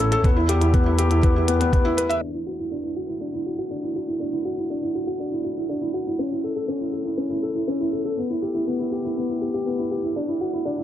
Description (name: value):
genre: piano and strings electronica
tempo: 121 BPM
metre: 4/4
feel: straight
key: D major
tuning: A4 = 440 Hz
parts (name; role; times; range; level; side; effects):
- felt-muted upright piano; riff; 0.0-10.8 s; B3 to E5; -23 LUFS; left 1 dB; tape echo
- muted symphonic double bass section; bass; 0.0-2.2 s; A1 to E2; -23 LUFS; equal; sidechain pumping
- electronic hi-hat; drums; 0.0-2.2 s; none; -30 LUFS; left 3 dB; low-pass filter on hats
- electronic kick drum; drums; 0.2-1.8 s; none; -18 LUFS; equal; none
- downlifter; sound effects; 2.5-6.2 s; none; -48 LUFS; right 1 dB; none
room: light reverb, small room ambience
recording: dark, warm production, low-pass filter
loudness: -21 LUFS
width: side -11 dB against mid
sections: 0.0-2.2 A section; 2.2-10.8 B section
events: filter sweep 2.2-10.8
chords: 0.2 Em; 2.2 Dadd9; 6.2 A; 8.2 Em; 10.2 Dadd9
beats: | 0.24 0.73 1.23 1.73 | 2.22 2.72 3.21 3.71 | 4.20 4.70 5.20 5.69 | 6.19 6.68 7.18 7.67 | 8.17 8.67 9.16 9.66 | 10.15 10.65